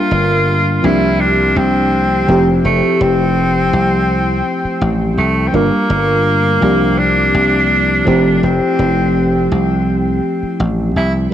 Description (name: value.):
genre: vaporwave.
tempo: 83 BPM.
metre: 4/4.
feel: swing 53% on 16ths.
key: F major.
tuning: A4 = 440 Hz.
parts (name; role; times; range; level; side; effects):
bright tenor saxophone; melody; 0.0-11.1 s; A3 to F4; -17 LUFS; right 1 dB; tape echo.
mellow FM electric piano; accompaniment; 0.0-11.3 s; F3 to Bb4; -15 LUFS; left 1 dB; analog chorus.
dry thumbed slap bass; bass; 0.1-11.3 s; F1 to C2; -17 LUFS; equal; tube saturation.
room: moderate huge ambient reverb, RT60 4.9 s.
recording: cassette tape.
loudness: -12 LUFS.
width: side -10 dB against mid.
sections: 0.0-11.3 A section.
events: none.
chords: 0.0 Gm7; 0.8 C9sus4; 2.3 Fmaj9; 5.5 Gm7; 6.6 C9sus4; 8.1 Fmaj9.